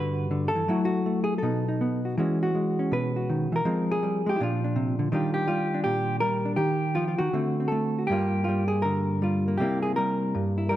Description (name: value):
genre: solo jazz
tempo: 162 BPM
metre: 4/4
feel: swing 65% on 8ths, rubato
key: unclear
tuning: A4 = 440 Hz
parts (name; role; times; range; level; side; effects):
- hollow-body jazz guitar; solo; 0.0-10.8 s; G2 to B4; -24 LUFS; equal; none
room: light reverb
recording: close, detailed microphones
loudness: -24 LUFS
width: side -13 dB against mid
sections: 0.0-8.1 A section; 8.1-10.8 B section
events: none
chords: 0.0 Gmaj7; 0.7 Gbm7; 1.4 B7; 2.2 E69; 3.7 Fm; 4.4 Bbadd9; 5.1 Ebmaj9; 7.3 D7; 8.1 Gm7; 9.6 C7